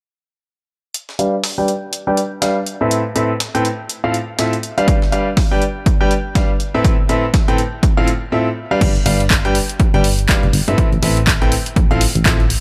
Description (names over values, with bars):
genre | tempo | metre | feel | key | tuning
piano house | 122 BPM | 4/4 | swing 59% on 16ths | G mixolydian | A4 = 437 Hz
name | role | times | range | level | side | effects
breakbeat sampler-style drum kit | drums | 0.9-8.2 s | hi-hat, snare drum | -26 LUFS | equal | sidechain pumping on hats, high-pass filter on hats, high-pass filter on snare
clear concert grand piano | riff | 1.2-12.4 s | A2 to G5 | -20 LUFS | equal | sidechain pumping, low-pass filter, tape echo
electronic kick drum | drums | 4.9-12.4 s | none | -18 LUFS | equal | overdrive
solid FM bass | bass | 8.8-12.6 s | F1 to G2 | -20 LUFS | equal | tube saturation, sidechain pumping
punchy analog drum machine | drums | 8.8-12.6 s | crash cymbal, handclaps, hi-hat | -22 LUFS | equal | overdrive
room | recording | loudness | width
light reverb | none | -16 LUFS | mono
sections
0.9-8.8 A section; 8.8-12.6 B section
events
filter sweep on grand piano 0.9-8.8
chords
0.9 G7; 2.9 Amadd9; 3.9 F/A; 6.8 Amadd9; 7.8 Fmaj7/A; 8.8 G7; 10.8 Amadd9; 11.8 Fmaj7/A